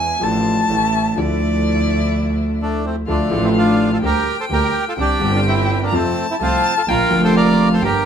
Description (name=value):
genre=tango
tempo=126 BPM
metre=4/4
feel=rubato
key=D minor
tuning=A4 = 441 Hz
part: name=dark violin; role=second line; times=0.0-8.1 s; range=D5 to Bb5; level=-22 LUFS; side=left 3 dB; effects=none
part: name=clear concert grand piano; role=accompaniment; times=0.0-8.0 s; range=F1 to A4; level=-22 LUFS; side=left 1 dB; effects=none
part: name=dark studio string section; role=stabs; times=0.0-8.0 s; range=F3 to G4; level=-27 LUFS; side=left 3 dB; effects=none
part: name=clear double bass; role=bass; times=0.0-8.0 s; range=F1 to F2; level=-19 LUFS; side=right 1 dB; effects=none
part: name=bandoneon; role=melody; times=2.6-8.1 s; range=A3 to D5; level=-20 LUFS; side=right 2 dB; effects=none
room=wet studio reverb, RT60 0.6 s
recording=band playing live in one room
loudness=-15 LUFS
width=side -8 dB against mid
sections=0.0-3.1 A section; 3.1-8.1 B section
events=violin solo 0.0-3.1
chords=0.2 Dm/A; 0.7 A; 1.2 Dmadd9; 3.1 Dm; 4.0 Gm/D; 5.0 Csus2; 5.9 F; 6.9 Bb